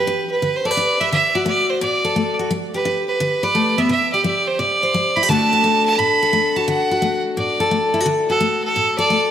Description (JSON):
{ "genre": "country", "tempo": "173 BPM", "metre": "4/4", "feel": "swing 65% on 8ths", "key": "D mixolydian", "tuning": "A4 = 442 Hz", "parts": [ { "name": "clear fiddle", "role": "melody", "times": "0.0-9.3 s", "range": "A4 to B5", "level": "-18 LUFS", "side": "right 3 dB", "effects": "analog delay" }, { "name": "picked steel-string acoustic guitar", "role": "accompaniment", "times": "0.0-9.3 s", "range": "A2 to C5", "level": "-19 LUFS", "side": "left 2 dB", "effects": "none" } ], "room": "wet lush hall reverb, RT60 2.4 s", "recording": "dreamy mix soaked in reverb", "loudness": "-16 LUFS", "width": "side -10 dB against mid", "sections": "0.0-9.3 A section", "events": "none", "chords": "0.0 G; 1.1 D; 2.5 G; 3.9 C5; 5.3 D" }